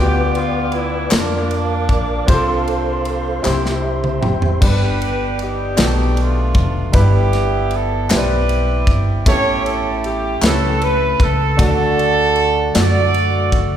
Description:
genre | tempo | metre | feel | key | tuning
slow gospel | 52 BPM (dotted quarters) | 6/8 | straight | G major from 4.6 s | A4 = 440 Hz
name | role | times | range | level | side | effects
mellow horn section | melody | 0.0-13.8 s | F3 to D5 | -19 LUFS | right 2 dB | none
warm grand piano | accompaniment | 0.0-13.8 s | G2 to G5 | -22 LUFS | equal | none
mellow tonewheel organ | sustained chords | 0.0-4.6 s | G4 to D6 | -24 LUFS | equal | chorus vibrato, fast rotary speaker
upright bass | bass | 0.0-13.8 s | F1 to F#2 | -20 LUFS | equal | none
modern studio drum kit | drums | 0.3-13.7 s | crash cymbal, kick drum, ride cymbal, snare drum, toms | -18 LUFS | equal | none
group handclap | percussion | 1.1-13.1 s | none | -28 LUFS | left 3 dB | none
room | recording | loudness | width
wet recital hall reverb, RT60 1.6 s | recorded in a church or concert hall | -14 LUFS | side -10 dB against mid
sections
0.0-4.6 A section; 4.6-13.8 A section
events
drum fill 3.5-4.6; grand piano fill 3.5-4.6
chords
0.0 G7/D; 1.1 Bb/F; 2.3 F/C; 3.5 C; 4.6 G; 5.8 B7alt; 6.9 Em/G; 9.3 A7; 11.6 D

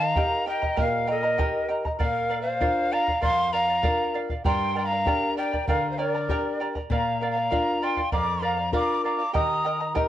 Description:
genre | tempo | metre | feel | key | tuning
andean folk, Andean ensemble | 98 BPM | 4/4 | straight | unclear | A4 = 440 Hz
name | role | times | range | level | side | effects
breathy bright quena | melody | 0.0-9.9 s | D5 to Eb6 | -27 LUFS | left 2 dB | plate reverb
breathy polished pan flute | second line | 0.0-9.9 s | Bb4 to Bb5 | -28 LUFS | right 2 dB | none
charango | accompaniment | 0.0-10.1 s | G4 to Bb5 | -29 LUFS | right 2 dB | none
nylon-string guitar | accompaniment | 0.0-10.1 s | F2 to Bb4 | -31 LUFS | left 4 dB | none
bombo | percussion | 0.2-10.1 s | none | -28 LUFS | equal | none
room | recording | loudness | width
wet small room reverb, RT60 0.6 s | worn, warbling old tape, cassette tape, warbly pitch drift | -22 LUFS | side -12 dB against mid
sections
0.0-10.1 A section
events
none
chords
0.0 Eb; 2.0 Bb; 4.4 Gm; 6.9 Bb; 9.3 Eb

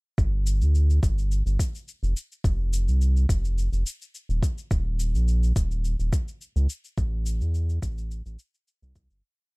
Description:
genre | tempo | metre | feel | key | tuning
sunset chillout | 106 BPM | 4/4 | swing 53% on 16ths | unclear | A4 = 440 Hz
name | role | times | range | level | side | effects
round analog bass | bass | 0.2-9.2 s | Eb1 to E2 | -22 LUFS | equal | none
electronic kick drum | drums | 0.2-9.1 s | none | -24 LUFS | equal | small room ambience
shaker | drums | 0.2-9.2 s | none | -39 LUFS | left 3 dB | small room ambience
room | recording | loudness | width
little or no reverb | dark, warm production | -23 LUFS | side -33 dB against mid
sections
0.2-9.2 groove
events
fade-out 6.2-9.2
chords
none

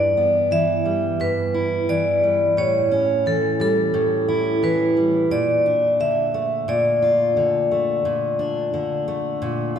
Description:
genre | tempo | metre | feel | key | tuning
pop | 88 BPM | 4/4 | straight | unclear | A4 = 440 Hz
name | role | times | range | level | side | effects
vibraphone with medium hard mallets | melody | 0.0-9.8 s | A4 to E5 | -19 LUFS | equal | none
fingerpicked steel-string acoustic guitar | accompaniment | 0.0-9.8 s | G2 to F4 | -23 LUFS | equal | none
room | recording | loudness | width
wet concert hall reverb, RT60 2.1 s | recorded in a church or concert hall | -18 LUFS | side -8 dB against mid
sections
0.0-9.8 A section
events
none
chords
0.0 G6; 2.6 A7; 5.3 Bbmaj7

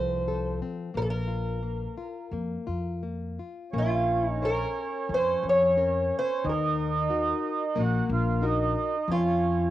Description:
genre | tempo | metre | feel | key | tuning
fado-style ballad | 83-92 BPM | 4/4 | rubato | Bb minor | A4 = 436 Hz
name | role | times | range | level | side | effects
fingerpicked twelve-string acoustic guitar | melody | 0.0-9.7 s | F4 to Db5 | -27 LUFS | equal | cassette tape
nylon-string guitar | accompaniment | 0.0-9.7 s | Eb3 to Db5 | -33 LUFS | left 5 dB | cassette tape
upright bass | bass | 0.0-9.7 s | Bb1 to F2 | -30 LUFS | equal | none
mellow accordion | second line | 3.7-9.7 s | Db4 to Gb4 | -30 LUFS | right 5 dB | cassette tape, plate reverb
room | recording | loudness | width
moderate booth ambience, RT60 0.2 s | home recording on cassette | -25 LUFS | side -14 dB against mid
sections
0.0-3.7 A section; 3.7-9.7 A section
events
none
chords
0.0 F; 0.9 Bb5; 3.7 Bbmadd9; 6.5 Ebm; 9.1 Bbm/F (rootless)

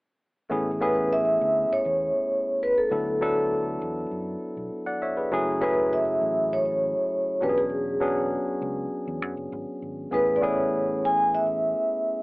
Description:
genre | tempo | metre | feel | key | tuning
lush 1970s-style soul | 100 BPM | 4/4 | straight | A major | A4 = 436 Hz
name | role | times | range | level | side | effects
barky tine electric piano | accompaniment | 0.5-12.2 s | F#3 to F#5 | -28 LUFS | equal | none
fingered electric bass | bass | 0.5-11.7 s | E1 to F#2 | -38 LUFS | equal | none
vibraphone with soft mallets | melody | 0.8-12.2 s | G#4 to G#5 | -23 LUFS | equal | slapback echo
room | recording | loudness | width
light reverb, small room ambience | AM radio sound | -23 LUFS | side -25 dB against mid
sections
0.5-12.2 A section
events
none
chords
0.5 Amaj9; 2.9 D69; 5.3 F#m9; 7.4 E13; 10.1 Amaj9

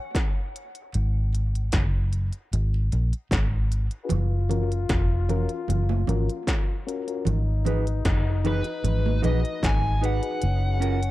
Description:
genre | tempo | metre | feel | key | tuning
dub reggae | 76 BPM | 4/4 | straight | G# dorian | A4 = 440 Hz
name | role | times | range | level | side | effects
breathy trombone | second line | 0.0-11.1 s | C#4 to E#4 | -35 LUFS | left 7 dB | high-pass filter, dub echo
industrial drum kit | drums | 0.1-11.1 s | hi-hat, kick drum, snare drum | -26 LUFS | equal | none
vintage muted fingered electric bass | bass | 0.9-11.1 s | E#1 to A#1 | -23 LUFS | equal | none
congas | percussion | 0.9-9.4 s | none | -33 LUFS | right 8 dB | high-pass filter on perc, dub echo
reed electric piano | stabs | 1.3-10.4 s | C#4 to B4 | -33 LUFS | left 5 dB | high-pass filter, dub echo
mellow electric guitar | accompaniment | 7.7-11.0 s | C#4 to B4 | -34 LUFS | right 6 dB | wide subtle chorus, high-pass filter, dub echo
bluesy overdriven lead guitar | melody | 8.5-11.1 s | B4 to G#5 | -33 LUFS | equal | distortion, dub echo
room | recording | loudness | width
little or no reverb | dark, warm production | -22 LUFS | side -16 dB against mid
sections
0.0-11.1 A section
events
break 0.0-7.3; filter sweep 0.0-4.1; part muted 10.4-11.1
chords
0.0 N.C.; 0.9 G#m7; 4.1 F#maj7; 7.3 G#m7; 10.4 F#maj7

